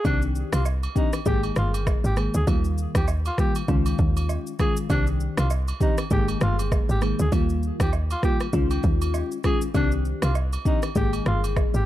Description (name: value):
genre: afrobeats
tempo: 99 BPM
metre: 4/4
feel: swing 58% on 16ths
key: unclear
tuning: A4 = 440 Hz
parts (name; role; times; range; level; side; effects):
- growling alto saxophone; melody; 0.0-11.9 s; D4 to Ab4; -31 LUFS; equal; digital delay
- bell-like FM electric piano; accompaniment; 0.0-11.8 s; Eb3 to Ab4; -28 LUFS; left 3 dB; chorus, phaser
- woody log drum bass; bass; 0.0-11.9 s; G1 to Eb2; -24 LUFS; equal; none
- afro-pop drum kit; drums; 0.0-11.9 s; kick drum, rim click, shaker; -25 LUFS; equal; none
- agogo bells and woodblock; percussion; 0.1-11.7 s; none; -36 LUFS; right 8 dB; none
room: little or no reverb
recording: dark, warm production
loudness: -21 LUFS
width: side -14 dB against mid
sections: 0.0-11.9 A section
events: none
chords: 0.0 Cmadd9; 1.3 Absus2; 2.5 Ebadd9; 3.7 Dbadd9; 4.9 Cmadd9; 6.1 Absus2; 7.3 Ebadd9; 8.5 Dbadd9; 9.7 Cmadd9; 11.0 Absus2